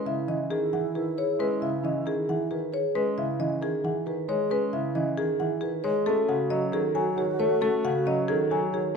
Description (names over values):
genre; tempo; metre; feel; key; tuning
classical, minimalist pattern music; 270 BPM (eighths); 7/8; straight; C# minor; A4 = 440 Hz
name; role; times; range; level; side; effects
marimba with medium mallets; melody; 0.0-9.0 s; G#4 to G#5; -29 LUFS; left 6 dB; none
mellow alto flute; second line; 0.0-2.7, 6.1-8.9 s; E4 to F#4; -34 LUFS; left 1 dB; none
warm grand piano; accompaniment; 0.0-9.0 s; C#3 to A3; -31 LUFS; equal; none
vibraphone with soft mallets; arpeggios; 0.0-9.0 s; C#4 to C#5; -29 LUFS; right 7 dB; none
room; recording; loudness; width
moderate recital hall reverb, RT60 1.6 s; minimal, uncompressed stereo recording; -24 LUFS; side -5 dB against mid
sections
0.0-9.0 A section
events
none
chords
0.0 C#m9; 6.1 F#madd9/C#